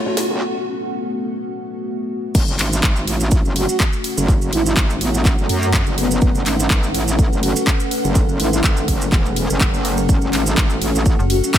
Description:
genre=bass house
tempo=124 BPM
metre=4/4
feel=swing 55% on 16ths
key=F# minor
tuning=A4 = 441 Hz
part: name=dark analog pad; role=sustained chords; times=0.0-11.6 s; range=A3 to B4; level=-26 LUFS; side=left 1 dB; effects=chorus, sidechain pumping
part: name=granular cloud pad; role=texture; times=0.0-11.6 s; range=C#4 to F#5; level=-26 LUFS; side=equal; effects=built-in reverb, sidechain pumping
part: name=house drum kit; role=drums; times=0.2-11.6 s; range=crash cymbal, handclaps, hi-hat, ride cymbal, snare drum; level=-23 LUFS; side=equal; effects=none
part: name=metallic wobble bass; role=bass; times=0.3-11.2 s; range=E1 to F#2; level=-20 LUFS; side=equal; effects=chorus, tube saturation, sidechain pumping, high-pass filter
part: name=electronic kick drum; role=drums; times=2.3-11.6 s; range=none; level=-17 LUFS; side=equal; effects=none
part: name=maracas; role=percussion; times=2.3-11.6 s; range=none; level=-28 LUFS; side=right 5 dB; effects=none
part: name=breathy flute-like synth lead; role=melody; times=3.6-11.5 s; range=B3 to F#4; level=-25 LUFS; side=equal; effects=wide subtle chorus, digital delay
part: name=metallic FM bass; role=bass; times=11.2-11.4 s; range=F#1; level=-18 LUFS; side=equal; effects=overdrive, sidechain pumping
room=little or no reverb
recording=none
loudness=-15 LUFS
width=side -10 dB against mid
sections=0.0-2.3 A section; 2.3-11.6 B section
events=build-up 0.0-2.3; drum fill 0.0-0.4; break 0.4-2.3; drop 2.3-11.6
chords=0.0 F#m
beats=| 0.41 0.90 1.38 1.86 | 2.35 2.83 3.32 3.80 | 4.28 4.77 5.25 5.74 | 6.22 6.70 7.19 7.67 | 8.15 8.64 9.12 9.61 | 10.09 10.57 11.06 11.54

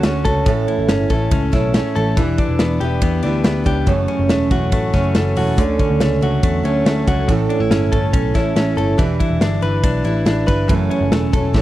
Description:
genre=jangly indie pop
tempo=141 BPM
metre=4/4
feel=straight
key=unclear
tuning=A4 = 441 Hz
part: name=picked steel-string acoustic guitar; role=accompaniment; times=0.0-11.6 s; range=F#2 to B4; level=-21 LUFS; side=right 5 dB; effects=none
part: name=direct-recorded clean electric guitar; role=arpeggios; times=0.0-11.6 s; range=F#2 to B4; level=-21 LUFS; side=left 4 dB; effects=tape echo
part: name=vintage muted picked electric bass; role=bass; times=0.0-11.6 s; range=E1 to E2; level=-20 LUFS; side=equal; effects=none
part: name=big rock drum kit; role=drums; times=0.0-11.6 s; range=hi-hat, kick drum, ride cymbal, snare drum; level=-18 LUFS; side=equal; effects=none
room=small room reverb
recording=dry, close 1970s-style studio recording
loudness=-14 LUFS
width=side -14 dB against mid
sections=0.0-11.6 A section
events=none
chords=0.5 A; 2.2 Em7; 3.9 F#m7; 5.6 Dmaj7; 7.3 A; 9.0 Em7; 10.7 F#m7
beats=0.04 | 0.47 0.89 1.32 1.75 | 2.17 2.60 3.02 3.45 | 3.88 4.30 4.73 5.16 | 5.58 6.01 6.43 6.86 | 7.29 7.71 8.14 8.57 | 8.99 9.42 9.84 10.27 | 10.70 11.12 11.55

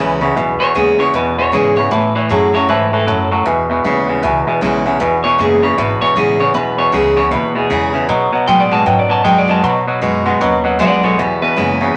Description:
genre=rock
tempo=155 BPM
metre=4/4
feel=swing 62% on 8ths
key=E major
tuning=A4 = 440 Hz
part: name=electric guitar through a small old amp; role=melody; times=0.0-12.0 s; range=G4 to B5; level=-18 LUFS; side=equal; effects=none
part: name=clear upright piano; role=accompaniment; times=0.0-11.9 s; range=B4 to B5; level=-23 LUFS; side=equal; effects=none
part: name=picked steel-string acoustic guitar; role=accompaniment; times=0.0-12.0 s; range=E2 to F#4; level=-24 LUFS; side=equal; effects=none
part: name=twangy electric guitar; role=riff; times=0.0-11.9 s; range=E2 to G#3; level=-18 LUFS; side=equal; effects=none
part: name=upright bass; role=bass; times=0.0-11.9 s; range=E1 to B2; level=-26 LUFS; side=equal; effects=none
room=moderate studio reverb, RT60 1.0 s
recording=none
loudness=-14 LUFS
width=mono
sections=0.0-12.0 A section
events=none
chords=0.0 E; 1.9 A; 3.5 E; 8.1 B; 11.2 E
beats=| 0.37 0.76 1.15 1.53 | 1.92 2.31 2.69 3.08 | 3.46 3.85 4.24 4.62 | 5.01 5.39 5.78 6.17 | 6.55 6.94 7.33 7.71 | 8.10 8.48 8.87 9.26 | 9.64 10.03 10.41 10.80 | 11.19 11.57 11.96

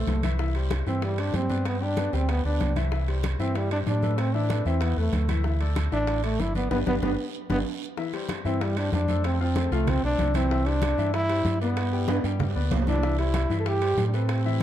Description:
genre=latin, salsa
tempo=190 BPM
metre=4/4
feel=straight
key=C major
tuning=A4 = 440 Hz
part: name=clear trombone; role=melody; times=0.0-14.6 s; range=G3 to A4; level=-28 LUFS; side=right 1 dB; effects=none
part: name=clear concert grand piano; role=accompaniment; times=0.0-14.6 s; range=E3 to G5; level=-32 LUFS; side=left 6 dB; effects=none
part: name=fingered electric bass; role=bass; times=0.0-14.6 s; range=G1 to A2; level=-26 LUFS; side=equal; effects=none
part: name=bongos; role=percussion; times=0.1-14.6 s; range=none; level=-39 LUFS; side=left 7 dB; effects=none
part: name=congas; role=percussion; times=0.1-14.6 s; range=none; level=-33 LUFS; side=left 1 dB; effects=none
part: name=guiro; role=percussion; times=0.1-14.6 s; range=none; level=-43 LUFS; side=right 10 dB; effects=none
part: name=timbales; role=percussion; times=0.1-14.6 s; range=none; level=-36 LUFS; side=right 8 dB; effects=none
room=light reverb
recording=dark, warm production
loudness=-23 LUFS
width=side -11 dB against mid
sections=0.0-8.0 A section; 8.0-14.6 A section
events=band accent 6.7-8.0; drum fill 12.1-13.0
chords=0.4 C; 2.9 Cadd9; 4.2 Asus2; 5.5 Dsus2; 6.7 G; 8.0 Cadd9; 9.2 F; 10.5 C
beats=0.07 | 0.39 0.71 1.02 1.34 | 1.66 1.97 2.29 2.60 | 2.92 3.24 3.55 3.87 | 4.18 4.50 4.82 5.13 | 5.45 5.77 6.08 6.40 | 6.71 7.03 7.35 7.66 | 7.98 8.29 8.61 8.93 | 9.24 9.56 9.87 10.19 | 10.51 10.82 11.14 11.45 | 11.77 12.09 12.40 12.72 | 13.03 13.35 13.66 13.98 | 14.29 14.61

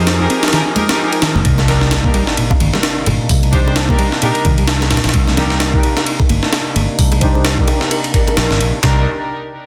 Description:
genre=breakbeat, breaks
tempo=130 BPM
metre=4/4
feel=swing 57% on 16ths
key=C minor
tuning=A4 = 442 Hz
part: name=percussive tonewheel organ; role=sustained chords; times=0.0-9.1 s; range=C3 to Bb4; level=-26 LUFS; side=equal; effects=overdrive, slow rotary speaker, vintage 12-bit sampler grit, sidechain pumping
part: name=picked electric bass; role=riff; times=0.0-5.1, 8.8-9.0 s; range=Bb2 to Eb4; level=-22 LUFS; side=equal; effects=tube saturation, tape echo
part: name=fingered electric bass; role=bass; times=0.0-9.0 s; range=F1 to F2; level=-20 LUFS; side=equal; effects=low-pass filter
part: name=breakbeat sampler-style drum kit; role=drums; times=0.1-9.0 s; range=handclaps, hi-hat, kick drum, ride cymbal, snare drum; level=-17 LUFS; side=equal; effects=none
part: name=rich studio string section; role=stabs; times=0.2-9.0 s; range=D4 to C5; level=-23 LUFS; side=equal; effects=low-pass filter, tape echo
part: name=bongos and congas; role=percussion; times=0.8-8.6 s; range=none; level=-27 LUFS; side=equal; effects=none
part: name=impact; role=sound effects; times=1.6-3.3 s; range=none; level=-28 LUFS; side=equal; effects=none
room=light reverb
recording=dense, heavily limited modern master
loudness=-14 LUFS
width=mono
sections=0.0-1.5 A section; 1.5-8.8 B section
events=drop 0.0-1.5; impact 1.5-3.3; filter sweep on string section 1.5-8.8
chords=0.0 Fm11; 1.5 Cm9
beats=0.07 0.53 0.99 | 1.45 1.91 2.37 2.84 | 3.30 3.76 4.22 4.68 | 5.14 5.61 6.07 6.53 | 6.99 7.45 7.91 8.37 | 8.84

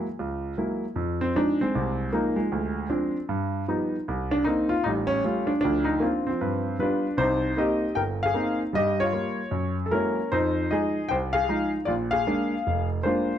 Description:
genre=solo jazz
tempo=154 BPM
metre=4/4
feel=swing 65% on 8ths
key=C minor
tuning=A4 = 440 Hz
part: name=clear concert grand piano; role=solo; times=0.0-13.4 s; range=F1 to G5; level=-23 LUFS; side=equal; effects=none
room=moderate large studio reverb, RT60 1.1 s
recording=none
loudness=-23 LUFS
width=side -10 dB against mid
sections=0.0-7.2 A section; 7.2-13.4 B section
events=none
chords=0.0 F#9; 1.0 Fm7; 2.5 Dm7b5; 3.3 Gaug7; 4.1 Cm7; 4.8 A7b13; 5.6 Dm7; 6.4 G7; 7.2 Cm7; 8.7 Gm7b5; 9.5 F#9; 10.3 Fm7; 11.9 Bb7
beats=0.17 0.56 | 0.95 1.34 1.73 2.12 | 2.51 2.90 3.29 3.68 | 4.07 4.46 4.85 5.24 | 5.63 6.01 6.41 6.79 | 7.18 7.58 7.96 8.36 | 8.75 9.14 9.53 9.92 | 10.31 10.70 11.09 11.48 | 11.87 12.26 12.65 13.04

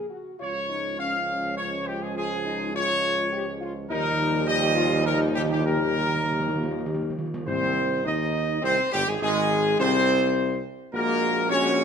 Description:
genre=classical, ceremonial fanfare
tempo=103 BPM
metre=3/4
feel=straight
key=Ab major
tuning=A4 = 440 Hz
part: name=mellow French horn section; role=sustained chords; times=0.0-11.8 s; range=G3 to G4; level=-30 LUFS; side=left 5 dB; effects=none
part: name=mellow trombone section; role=sustained chords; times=0.0-11.8 s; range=F3 to Eb4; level=-31 LUFS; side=right 1 dB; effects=none
part: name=warm tuba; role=bass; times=0.0-11.8 s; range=G1 to Eb2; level=-29 LUFS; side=right 3 dB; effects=none
part: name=mellow trumpet section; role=melody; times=0.4-11.8 s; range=G4 to F5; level=-25 LUFS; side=equal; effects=none
part: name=timpani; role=percussion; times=3.9-8.3 s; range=Ab2 to Eb3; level=-34 LUFS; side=right 1 dB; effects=none
room=wet recital hall reverb, RT60 1.5 s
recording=minimal, uncompressed stereo recording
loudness=-22 LUFS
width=side -7 dB against mid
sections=0.0-7.5 A section; 7.5-11.8 B section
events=timpani fill 3.9-7.5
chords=0.4 Db; 3.9 Ebadd9; 7.5 Ab; 10.9 Gbadd9/Bb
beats=| 0.41 1.00 1.57 | 2.16 2.75 3.33 | 3.90 4.47 5.05 | 5.64 6.25 6.86 | 7.47 8.06 8.64 | 9.22 9.80 10.37 | 10.94 11.51

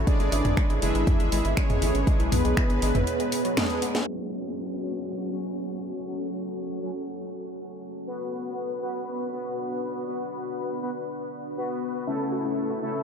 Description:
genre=melodic techno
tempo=120 BPM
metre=4/4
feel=straight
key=F# minor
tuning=A4 = 440 Hz
part: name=dark analog pad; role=sustained chords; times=0.0-13.0 s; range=A3 to B5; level=-39 LUFS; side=right 1 dB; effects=chorus, sidechain pumping
part: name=wide unison pluck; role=arpeggios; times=0.0-4.0, 12.1-12.9 s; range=F#3 to E5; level=-38 LUFS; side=equal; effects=sidechain pumping, ping-pong delay
part: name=tight sequencer bass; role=bass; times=0.0-3.0 s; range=F#1 to B1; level=-26 LUFS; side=equal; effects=sidechain pumping
part: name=deep dark ambient pad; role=texture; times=0.0-13.0 s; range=B3 to C#6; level=-37 LUFS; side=right 3 dB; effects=chorus, built-in reverb, sidechain pumping
part: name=wide unison lead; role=melody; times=0.1-4.0, 12.1-13.0 s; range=B3 to E4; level=-32 LUFS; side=left 1 dB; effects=sidechain pumping, ping-pong delay
part: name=soft supersaw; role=second line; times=0.1-4.0 s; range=B4 to E5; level=-38 LUFS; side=equal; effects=sidechain pumping, ping-pong delay
part: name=analog synth brass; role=stabs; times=0.1-13.0 s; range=D3 to B4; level=-31 LUFS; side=left 1 dB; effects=chorus, sidechain pumping, ping-pong delay
part: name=electronic kick drum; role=drums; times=0.1-2.7 s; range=none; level=-23 LUFS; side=equal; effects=none
part: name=house drum kit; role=drums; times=0.1-4.0 s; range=finger snaps, hi-hat, snare drum, toms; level=-31 LUFS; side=equal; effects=none
room=moderate huge ambient reverb, RT60 8.6 s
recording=dreamy mix soaked in reverb, low-pass filter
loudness=-25 LUFS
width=side -7 dB against mid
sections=0.0-4.1 A section; 4.1-13.0 B section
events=drop 0.0-4.1; break 3.1-4.1; drum fill 3.6-4.1; band accent 3.9; filter sweep 4.1-13.0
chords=0.1 G#dim; 4.1 F#m; 8.1 Bm; 12.1 A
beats=| 0.07 0.57 1.07 1.57 | 2.07 2.57 3.07 3.57 | 4.07 4.57 5.07 5.57 | 6.07 6.57 7.07 7.57 | 8.07 8.57 9.07 9.57 | 10.07 10.57 11.07 11.57 | 12.07 12.57

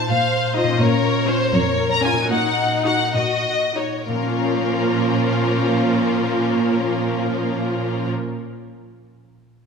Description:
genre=classical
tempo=62-85 BPM (dotted quarters)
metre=6/8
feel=rubato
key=Bb minor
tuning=A4 = 440 Hz
part: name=rich symphonic violin section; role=melody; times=0.0-8.1 s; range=Bb4 to Bb5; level=-23 LUFS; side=left 3 dB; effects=none
part: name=warm symphonic violin section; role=second line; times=0.0-8.1 s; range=Db4 to Db5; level=-24 LUFS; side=left 3 dB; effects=none
part: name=clear symphonic viola section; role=accompaniment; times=0.0-8.1 s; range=F3 to Gb4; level=-25 LUFS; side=right 1 dB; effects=none
part: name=concert harp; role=arpeggios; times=0.0-8.5 s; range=Bb2 to F5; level=-26 LUFS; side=left 3 dB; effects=none
part: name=rich symphonic cello section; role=bass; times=0.1-8.1 s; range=F2 to Bb2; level=-23 LUFS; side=right 4 dB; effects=none
room=wet scoring stage reverb, RT60 2.1 s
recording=minimal, uncompressed stereo recording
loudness=-17 LUFS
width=side -5 dB against mid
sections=0.0-4.1 A section; 4.1-7.8 B section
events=slowing down 0.1-4.1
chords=0.0 F7(no3)/Bb; 0.8 Bbm; 2.3 Ebm/Bb; 4.1 Bbm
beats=0.10 | 0.81 1.54 | 2.31 3.15 | 4.08 5.00 | 5.92 6.84

